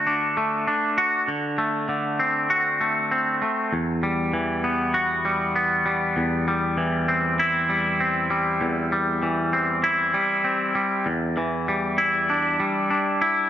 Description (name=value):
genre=rock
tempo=98 BPM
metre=4/4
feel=straight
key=E minor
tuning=A4 = 440 Hz
part: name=twangy electric guitar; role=solo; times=0.0-13.5 s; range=E2 to F#4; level=-20 LUFS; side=equal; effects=tape echo
room=light reverb, digital ambience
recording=none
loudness=-20 LUFS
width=side -10 dB against mid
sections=0.0-1.3 A section; 1.3-11.1 B section; 11.1-13.5 A section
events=none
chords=0.0 D; 1.3 D7; 3.7 Emadd9; 6.2 C/E; 11.1 Em7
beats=0.07 0.68 | 1.29 1.90 2.51 3.12 | 3.73 4.34 4.96 5.57 | 6.18 6.79 7.40 8.02 | 8.63 9.24 9.85 10.46 | 11.07 11.69 12.30 12.91